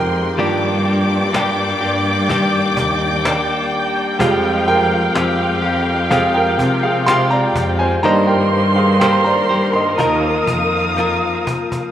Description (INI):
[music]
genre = pop ballad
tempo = 62 BPM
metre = 4/4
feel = straight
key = Eb major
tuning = A4 = 440 Hz
[part]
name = warm concert grand piano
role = accompaniment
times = 0.0-11.9 s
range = Eb3 to C6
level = -19 LUFS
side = right 2 dB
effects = none
[part]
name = warm studio string section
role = sustained chords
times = 0.0-11.9 s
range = Ab3 to Eb6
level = -19 LUFS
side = equal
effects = none
[part]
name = direct-recorded clean electric guitar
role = arpeggios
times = 0.0-11.9 s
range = G2 to C5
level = -21 LUFS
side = left 3 dB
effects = tape echo
[part]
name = rich symphonic cello section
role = bass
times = 0.0-11.4 s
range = Eb2 to C3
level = -20 LUFS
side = equal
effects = none
[part]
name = cajon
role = drums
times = 1.3-11.9 s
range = none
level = -24 LUFS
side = equal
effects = none
[sound]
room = moderate plate reverb, RT60 2.7 s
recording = rough home demo mix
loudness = -14 LUFS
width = side -10 dB against mid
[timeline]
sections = 0.0-11.9 A section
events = grand piano solo 0.0-11.9; drum fill 11.0-11.9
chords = 0.4 Ebmaj7/G; 4.2 Fmadd9; 8.0 Cm7/G; 10.0 Ebsus2